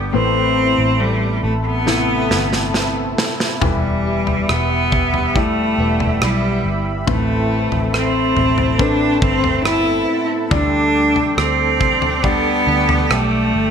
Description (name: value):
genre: pop ballad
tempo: 70 BPM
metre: 4/4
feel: straight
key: unclear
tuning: A4 = 441 Hz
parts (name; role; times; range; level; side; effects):
- clear concert grand piano; accompaniment; 0.0-13.7 s; A2 to D5; -23 LUFS; left 6 dB; analog chorus
- sweeping resonant pad; sustained chords; 0.0-13.7 s; G4 to E6; -26 LUFS; right 2 dB; chorus
- direct-recorded clean electric guitar; arpeggios; 0.0-13.7 s; E2 to G4; -28 LUFS; right 7 dB; ensemble chorus
- vintage muted fingered electric bass; bass; 0.0-13.7 s; E1 to D2; -22 LUFS; right 1 dB; none
- bright cello; melody; 0.1-13.7 s; G3 to E4; -18 LUFS; equal; none
- modern studio drum kit; drums; 1.9-13.3 s; kick drum, rim click, snare drum, toms; -21 LUFS; equal; gated reverb
room: moderate plate reverb, RT60 1.9 s, small room ambience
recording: bright 1980s-style digital production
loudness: -14 LUFS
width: side -7 dB against mid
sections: 0.0-13.7 A section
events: drum fill 1.9-3.6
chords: 0.1 Amadd9; 3.6 Em; 7.1 Amadd9; 10.5 Dsus4